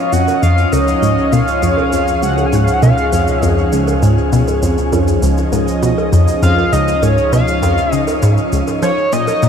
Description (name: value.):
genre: ambient, sequencer-driven space music.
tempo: 100 BPM.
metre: 4/4.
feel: straight.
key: unclear.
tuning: A4 = 440 Hz.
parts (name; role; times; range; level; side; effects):
pulse-width lead; melody; 0.0-9.5 s; C#5 to G#5; -18 LUFS; left 1 dB; chorus, ping-pong delay.
lush unison pad; sustained chords; 0.0-9.5 s; E#3 to A#5; -18 LUFS; equal; chorus.
analog drone; bass; 1.0-9.5 s; C#2 to F#2; -22 LUFS; equal; chorus.
tight sequenced synth; riff; 0.1-9.5 s; C#2 to E#3; -15 LUFS; equal; chorus, ping-pong delay.
cabasa and bongos; percussion; 0.1-9.5 s; none; -26 LUFS; right 6 dB; overdrive, ping-pong delay.
room: moderate shimmer reverb, RT60 6.9 s.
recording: none.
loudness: -11 LUFS.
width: side -7 dB against mid.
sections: 0.0-9.5 A section.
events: none.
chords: 0.0 C#add9; 8.8 F#6.